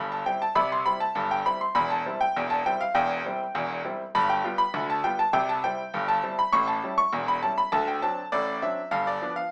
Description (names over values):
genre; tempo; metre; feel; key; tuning
ragtime piano; 100 BPM; 2/4; straight; C major; A4 = 438 Hz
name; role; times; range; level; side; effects
bright concert grand piano; solo; 0.0-9.5 s; E1 to C#6; -23 LUFS; equal; none
room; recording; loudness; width
moderate studio reverb, RT60 0.6 s; rough home demo mix, vinyl crackle, small speaker sound; -23 LUFS; side -38 dB against mid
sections
0.0-9.5 A section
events
none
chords
0.0 C; 1.8 C/E; 4.1 G7; 5.3 C; 6.5 A7; 7.7 D7; 8.9 G7